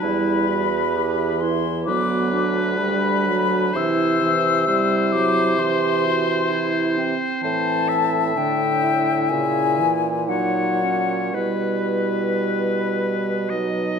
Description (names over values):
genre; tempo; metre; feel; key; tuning
classical, slow romantic movement for wind quintet; 64 BPM; 4/4; uneven beats, rubato; E minor; A4 = 439 Hz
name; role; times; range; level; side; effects
mellow silver concert flute; melody; 0.0-14.0 s; B4 to E6; -23 LUFS; left 9 dB; none
bright oboe; second line; 0.0-14.0 s; B4 to E5; -27 LUFS; left 3 dB; none
mellow clarinet; accompaniment; 0.0-14.0 s; B3 to G4; -26 LUFS; right 6 dB; none
warm French horn; accompaniment; 0.0-14.0 s; C#3 to G3; -26 LUFS; right 1 dB; none
warm bassoon; bass; 0.0-14.0 s; D2 to C3; -25 LUFS; right 4 dB; none
room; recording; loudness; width
wet recital hall reverb, RT60 1.4 s; none; -18 LUFS; side -6 dB against mid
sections
0.0-14.0 A section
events
none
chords
0.0 Em; 1.9 Bm/D; 3.8 C; 7.4 Am; 9.3 F#7/A#; 11.3 Em/B